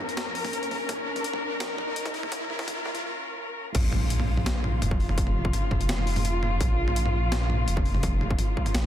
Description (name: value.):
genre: half-time drum and bass.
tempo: 168 BPM.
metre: 4/4.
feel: half-time.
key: Bb minor.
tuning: A4 = 440 Hz.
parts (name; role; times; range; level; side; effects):
muted studio cello section; sustained chords; 0.0-8.9 s; Db3 to Bb4; -31 LUFS; left 1 dB; sidechain pumping.
dark detuned saw bass; bass; 0.0-8.9 s; F1 to F2; -27 LUFS; equal; none.
electronic kick drum; drums; 0.0-8.6 s; none; -28 LUFS; equal; distortion, overdrive, high-pass filter on kick, high-pass filter on room.
riser and impact; sound effects; 0.0-5.2 s; none; -35 LUFS; equal; none.
boom bap sampler-style drum kit; drums; 0.1-8.8 s; crash cymbal, hi-hat, snare drum, toms; -32 LUFS; equal; overdrive.
room: digital ambience.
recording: dense, heavily limited modern master, high-pass filter.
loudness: -24 LUFS.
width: side -11 dB against mid.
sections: 0.0-3.8 A section; 3.8-8.9 B section.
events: build-up 0.0-3.8; riser 0.0-3.0; break 3.0-3.8; drop 3.8-8.9; impact 3.8-5.2.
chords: 0.0 Bbm.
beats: 0.18 0.54 | 0.89 1.25 1.61 1.96 | 2.32 2.68 3.04 3.39 | 3.75 4.11 4.46 4.82 | 5.18 5.54 5.89 6.25 | 6.61 6.96 7.32 7.68 | 8.04 8.39 8.75.